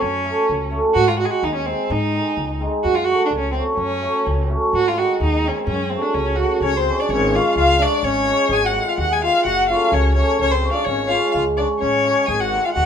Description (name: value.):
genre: balkan folk, Balkan wedding band.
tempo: 127 BPM.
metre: 2/4.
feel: straight.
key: F# hungarian minor.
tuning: A4 = 440 Hz.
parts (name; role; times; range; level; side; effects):
rich violin; melody; 0.0-12.9 s; B#3 to G#5; -20 LUFS; right 1 dB; none.
upright bass; bass; 0.0-12.9 s; F#1 to G#2; -24 LUFS; equal; none.
cimbalom; accompaniment; 0.2-12.9 s; B#2 to A4; -22 LUFS; right 1 dB; none.
accordion; second line; 6.6-12.9 s; B#3 to G#4; -22 LUFS; left 6 dB; none.
room: wet studio reverb, RT60 0.5 s.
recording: minimal, uncompressed stereo recording.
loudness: -16 LUFS.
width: side -8 dB against mid.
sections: 0.0-6.6 A section; 6.6-12.9 B section.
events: none.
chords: 0.0 F#m; 1.0 G#; 2.8 F#m; 4.7 G#; 5.7 F#m; 6.6 C#; 8.5 G#; 9.4 F#m; 10.4 C#; 12.3 G#.